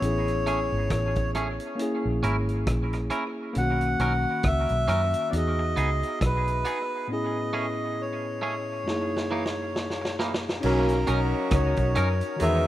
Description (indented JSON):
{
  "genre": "lovers rock reggae",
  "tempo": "68 BPM",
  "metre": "4/4",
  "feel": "swing 59% on 16ths",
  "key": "B major",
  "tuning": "A4 = 440 Hz",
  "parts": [
    { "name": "melodica", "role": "melody", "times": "0.0-12.7 s", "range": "A#4 to F#5", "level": "-30 LUFS", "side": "left 1 dB", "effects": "tape echo" },
    { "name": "tine electric piano", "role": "accompaniment", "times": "0.0-12.7 s", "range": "F#2 to B4", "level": "-30 LUFS", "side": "left 1 dB", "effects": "none" },
    { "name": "vintage muted fingered electric bass", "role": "bass", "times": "0.0-12.7 s", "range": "G#1 to F#2", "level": "-26 LUFS", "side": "equal", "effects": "none" },
    { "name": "vintage drum kit", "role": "drums", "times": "0.0-12.6 s", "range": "crash cymbal, hi-hat, kick drum, rim click, snare drum", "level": "-32 LUFS", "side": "equal", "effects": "dub echo" },
    { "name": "twangy electric guitar", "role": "stabs", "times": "0.5-12.1 s", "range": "E3 to A#4", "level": "-34 LUFS", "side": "right 2 dB", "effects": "dub echo" },
    { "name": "warm horn section", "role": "second line", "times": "10.6-12.7 s", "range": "C#3 to F#4", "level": "-28 LUFS", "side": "right 1 dB", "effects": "dub echo" }
  ],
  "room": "light reverb, studio reverb",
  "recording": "rough home demo mix",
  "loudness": "-24 LUFS",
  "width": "side -14 dB against mid",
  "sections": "0.0-10.6 A section; 10.6-12.7 B section",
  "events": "break 7.1-10.6; drum fill 8.9-10.6",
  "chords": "0.0 Amaj7; 1.8 A#m7b5/G#; 3.6 Bmaj9; 5.3 Emaj7; 7.1 Amaj7; 8.9 F#13; 10.6 Bmaj9"
}